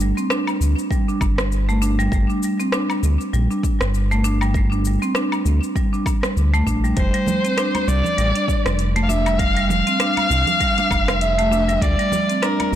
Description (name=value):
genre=organic downtempo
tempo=99 BPM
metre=4/4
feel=swing 57% on 16ths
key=unclear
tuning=A4 = 440 Hz
part: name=round analog bass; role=bass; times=0.0-12.8 s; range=F1 to D2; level=-20 LUFS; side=equal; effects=tube saturation, sidechain pumping
part: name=afro-pop drum kit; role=drums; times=0.0-12.7 s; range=cabasa, hi-hat, rim click, woodblock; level=-27 LUFS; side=left 1 dB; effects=soft clipping on snare
part: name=marimba with hard mallets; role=arpeggios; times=0.2-12.6 s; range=G3 to D4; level=-22 LUFS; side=right 1 dB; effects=tape echo
part: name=electronic kick drum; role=drums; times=0.9-12.0 s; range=none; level=-22 LUFS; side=equal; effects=none
part: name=bright kamancheh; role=melody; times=7.0-12.8 s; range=Bb4 to F5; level=-20 LUFS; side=left 1 dB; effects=tape echo
part: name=congas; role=percussion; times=7.3-12.8 s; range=none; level=-28 LUFS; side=right 4 dB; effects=none
room=light reverb, small room ambience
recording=blown-out, overdriven recording, overdrive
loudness=-17 LUFS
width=side -11 dB against mid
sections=0.0-12.8 A section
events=none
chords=0.0 G5; 7.0 F5; 11.8 N.C.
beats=0.30 0.91 1.51 | 2.12 2.73 3.33 3.94 | 4.54 5.15 5.76 6.36 | 6.97 7.58 8.18 8.79 | 9.39 10.00 10.61 11.21 | 11.82 12.42